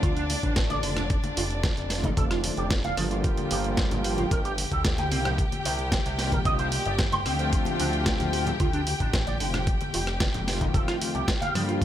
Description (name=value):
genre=nu-disco, nu disco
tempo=112 BPM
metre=4/4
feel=straight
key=unclear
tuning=A4 = 440 Hz
part: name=dark symphonic violin section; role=sustained chords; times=0.0-11.8 s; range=D4 to G5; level=-32 LUFS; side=left 1 dB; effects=sidechain pumping
part: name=electric guitar with an envelope filter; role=riff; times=0.0-11.7 s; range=D3 to C6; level=-31 LUFS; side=right 3 dB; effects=ensemble chorus
part: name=fat analog bass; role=bass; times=0.0-11.8 s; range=F1 to G2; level=-30 LUFS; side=equal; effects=none
part: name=dusty soul sampler-style drum kit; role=drums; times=0.0-11.8 s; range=hi-hat, rim click, snare drum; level=-31 LUFS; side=right 1 dB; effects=overdrive
part: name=electronic kick drum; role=drums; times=0.0-11.8 s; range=none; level=-27 LUFS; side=equal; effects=overdrive
part: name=congas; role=percussion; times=0.3-11.5 s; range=none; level=-35 LUFS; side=left 3 dB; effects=none
part: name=warm analog pad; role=accompaniment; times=0.8-11.8 s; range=D3 to F4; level=-33 LUFS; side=equal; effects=chorus, sidechain pumping, ping-pong delay
room=digital ambience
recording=none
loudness=-23 LUFS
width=side -11 dB against mid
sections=0.0-11.8 A section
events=none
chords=0.0 Dm; 1.1 F7; 3.2 Gm7; 5.1 Cm11; 7.5 Dm7; 9.7 F7